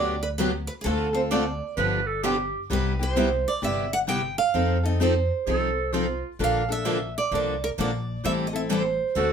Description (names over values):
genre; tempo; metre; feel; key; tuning
acoustic string swing (jazz manouche); 130 BPM; 4/4; swing 63% on 8ths; G major; A4 = 440 Hz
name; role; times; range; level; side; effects
picked steel-string acoustic guitar; melody; 0.0-9.3 s; Ab4 to G5; -27 LUFS; right 5 dB; none
picked steel-string acoustic guitar; accompaniment; 0.0-9.3 s; C3 to A4; -27 LUFS; left 4 dB; none
picked steel-string acoustic guitar; accompaniment; 0.0-9.3 s; C3 to A4; -31 LUFS; right 3 dB; none
upright bass; bass; 0.0-9.3 s; G1 to F2; -29 LUFS; equal; none
clear clarinet; second line; 1.8-2.6, 5.5-6.3, 9.2-9.3 s; F4 to B4; -28 LUFS; right 3 dB; none
room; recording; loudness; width
moderate studio reverb, RT60 0.6 s; band playing live in one room; -23 LUFS; side -7 dB against mid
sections
0.0-9.3 A section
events
none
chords
0.0 Gmaj7; 0.8 Dm7; 1.8 G7; 2.7 Cmaj7; 4.5 F7; 6.4 Bbmaj7; 8.2 Am7